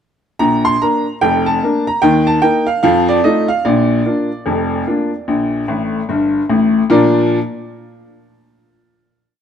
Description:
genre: ragtime piano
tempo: 74 BPM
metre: 2/4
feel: swing 60% on 16ths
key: Bb major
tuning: A4 = 440 Hz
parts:
  - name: clear upright piano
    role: solo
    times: 0.4-7.4 s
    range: F1 to C6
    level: -12 LUFS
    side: equal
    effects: none
room: light reverb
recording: close, detailed microphones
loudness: -12 LUFS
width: side -8 dB against mid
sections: 0.4-6.9 A section; 6.9-8.5 final chord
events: upright piano fill 5.7-6.9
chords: 0.4 Bb; 2.0 Eb5; 2.8 F7; 3.6 Bb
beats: | 0.40 1.21 | 2.02 2.83 | 3.65 4.46 | 5.28 6.09 | 6.91

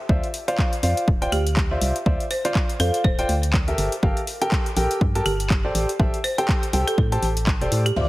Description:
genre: piano house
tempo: 122 BPM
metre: 4/4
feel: swing 58% on 16ths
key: D minor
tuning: A4 = 440 Hz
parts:
  - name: clear grand piano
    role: riff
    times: 0.1-8.1 s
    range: F4 to A5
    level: -25 LUFS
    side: equal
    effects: sidechain pumping, low-pass filter, dub echo
  - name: organ-like FM bass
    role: bass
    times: 0.1-8.1 s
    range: D1 to A2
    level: -24 LUFS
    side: equal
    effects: sidechain pumping
  - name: electronic kick drum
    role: drums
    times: 0.1-7.6 s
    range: none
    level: -21 LUFS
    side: equal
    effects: overdrive
  - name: punchy analog drum machine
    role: drums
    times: 0.2-8.1 s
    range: crash cymbal, handclaps, hi-hat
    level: -30 LUFS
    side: left 1 dB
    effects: overdrive, low-pass filter on hats, low-pass filter on snare, low-pass filter on cymbals
  - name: folk marimba with hard mallets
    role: melody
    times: 1.3-8.0 s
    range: G4 to C5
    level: -29 LUFS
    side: right 1 dB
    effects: dub echo
  - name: string machine, violins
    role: sustained chords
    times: 8.0-8.1 s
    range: D5 to D6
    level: -27 LUFS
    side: left 2 dB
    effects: ensemble chorus, sidechain pumping
  - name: impact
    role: sound effects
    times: 8.0-8.1 s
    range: none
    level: -24 LUFS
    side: equal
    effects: none
room: light reverb, digital ambience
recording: heavily compressed radio sound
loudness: -19 LUFS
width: side -18 dB against mid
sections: 0.0-8.0 A section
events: none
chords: 0.1 Dm9; 3.8 Gmadd9; 5.7 Am7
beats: | 0.09 0.58 1.08 1.57 | 2.06 2.55 3.04 3.54 | 4.03 4.52 5.01 5.50 | 6.00 6.49 6.98 7.47 | 7.96

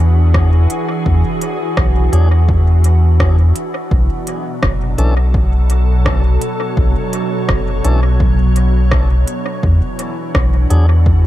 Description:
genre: ambient dub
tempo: 84 BPM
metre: 4/4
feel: swing 56% on 16ths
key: B dorian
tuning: A4 = 441 Hz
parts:
  - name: soft additive organ-like pad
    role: sustained chords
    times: 0.0-11.3 s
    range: B2 to E5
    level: -20 LUFS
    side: right 1 dB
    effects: ensemble chorus, built-in reverb
  - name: soft dub sub bass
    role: bass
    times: 0.0-11.3 s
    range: F#1 to E2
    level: -11 LUFS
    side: equal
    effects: none
  - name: electronic kick drum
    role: drums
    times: 0.3-11.2 s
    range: none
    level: -18 LUFS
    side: equal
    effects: overdrive
  - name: organic electronic drum kit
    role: drums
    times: 0.3-10.9 s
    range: hi-hat, rim click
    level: -23 LUFS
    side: equal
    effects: overdrive, dub echo
  - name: tonewheel organ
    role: stabs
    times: 2.1-10.9 s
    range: E3 to A4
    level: -27 LUFS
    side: left 2 dB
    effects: overdrive, low-pass filter, dub echo
room: little or no reverb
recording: echo-heavy mix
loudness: -12 LUFS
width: side -14 dB against mid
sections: 0.0-11.3 A section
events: none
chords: 0.0 E9; 3.9 Bm11; 9.6 E9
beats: 0.34 | 1.06 1.77 2.49 3.20 | 3.92 4.63 5.34 6.06 | 6.77 7.49 8.20 8.91 | 9.63 10.34 11.06

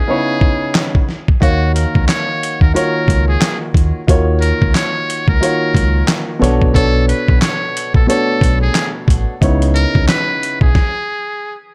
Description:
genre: hip hop, boom-bap hip-hop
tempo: 90 BPM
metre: 4/4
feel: swing 60% on 16ths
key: unclear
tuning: A4 = 440 Hz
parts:
  - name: trumpet with metal mute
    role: melody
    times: 0.0-11.6 s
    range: Gb4 to C#5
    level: -23 LUFS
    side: equal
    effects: high-pass filter, low-pass filter
  - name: dark baby grand piano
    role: accompaniment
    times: 0.1-10.7 s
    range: B2 to F5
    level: -21 LUFS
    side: equal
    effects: high-pass filter, low-pass filter
  - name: dusty soul sampler-style drum kit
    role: drums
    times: 0.4-10.9 s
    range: handclaps, hi-hat, kick drum, snare drum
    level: -17 LUFS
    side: equal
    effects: none
  - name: deep dub fingered electric bass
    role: bass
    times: 1.4-10.7 s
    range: A1 to Eb2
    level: -17 LUFS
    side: equal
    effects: none
room: digital ambience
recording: none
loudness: -14 LUFS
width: mono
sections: 0.0-11.7 A section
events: break 0.0-1.4; stop 10.8-11.7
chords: 0.0 Dbm9; 1.4 Ebm9; 6.4 Bm9; 9.4 Dbm9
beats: 0.08 0.75 | 1.42 2.08 2.75 3.42 | 4.08 4.75 5.42 6.08 | 6.75 7.42 8.08 8.75 | 9.42 10.08 10.75 11.42

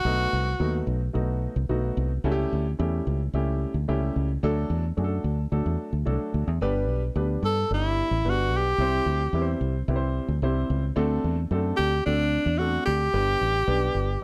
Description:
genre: uptempo 1960s-style soul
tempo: 110 BPM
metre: 4/4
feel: straight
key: G major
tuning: A4 = 440 Hz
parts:
  - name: bright tenor saxophone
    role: melody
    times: 0.0-0.9, 7.4-14.2 s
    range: D4 to A4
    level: -28 LUFS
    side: equal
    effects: none
  - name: fingered electric bass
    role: bass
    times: 0.0-14.2 s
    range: G1 to G2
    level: -28 LUFS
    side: equal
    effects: none
  - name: dark baby grand piano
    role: accompaniment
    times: 0.1-14.2 s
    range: F#3 to C5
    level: -32 LUFS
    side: equal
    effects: none
room: light reverb, studio reverb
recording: dark, warm production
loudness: -26 LUFS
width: mono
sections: 0.0-14.2 A section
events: none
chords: 0.0 B7; 2.2 A7/C#; 4.4 D; 6.6 G; 8.8 C; 11.0 D7; 13.1 G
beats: | 0.05 0.60 1.14 1.69 | 2.24 2.79 3.33 3.88 | 4.42 4.97 5.52 6.06 | 6.61 7.15 7.70 8.24 | 8.79 9.33 9.88 10.42 | 10.96 11.51 12.05 12.60 | 13.14 13.68 14.22

